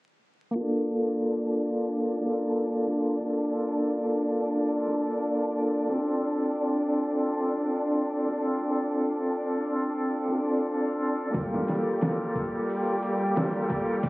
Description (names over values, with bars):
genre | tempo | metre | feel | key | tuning
trip hop | 89 BPM | 4/4 | swing 58% on 16ths | unclear | A4 = 442 Hz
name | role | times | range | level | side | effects
bright tonewheel organ | accompaniment | 0.5-14.1 s | Bb3 to A4 | -27 LUFS | equal | slow rotary speaker, tremolo, low-pass filter, tape echo
rich symphonic string section | sustained chords | 0.6-14.1 s | G3 to G4 | -29 LUFS | equal | none
trip hop sampler-style drum kit | drums | 11.3-14.1 s | hi-hat, kick drum, snare drum | -30 LUFS | equal | studio reverb
congas and tambourine | percussion | 11.5-13.5 s | none | -36 LUFS | equal | none
room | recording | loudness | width
light reverb, studio reverb | recorded on a phone in the room, vinyl crackle, compression, low-pass filter | -25 LUFS | side -21 dB against mid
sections
0.6-14.1 A section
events
filter sweep on tonewheel organ 0.6-14.1; filter sweep 0.6-14.1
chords
0.6 Bbmaj7; 5.9 Dm7; 11.3 Gm7